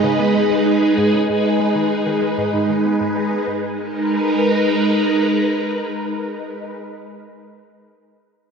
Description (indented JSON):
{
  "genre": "ambient",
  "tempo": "96 BPM",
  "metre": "4/4",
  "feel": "straight",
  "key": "G# minor",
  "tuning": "A4 = 440 Hz",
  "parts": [
    { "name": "phased string machine", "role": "sustained chords", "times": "0.0-6.7 s", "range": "G#3 to B4", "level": "-17 LUFS", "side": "equal", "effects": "ensemble chorus, phaser, cassette tape" },
    { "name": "analog pluck", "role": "riff", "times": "0.0-3.8 s", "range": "G#2 to D#4", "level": "-27 LUFS", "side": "equal", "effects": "chorus, phaser, cassette tape, ping-pong delay" }
  ],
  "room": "wet lush hall reverb, RT60 2.9 s",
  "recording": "home recording on cassette",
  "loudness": "-16 LUFS",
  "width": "side -6 dB against mid",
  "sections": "0.0-3.5 A section; 3.5-6.0 B section",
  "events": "none",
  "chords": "0.0 G#m; 3.5 G#madd9"
}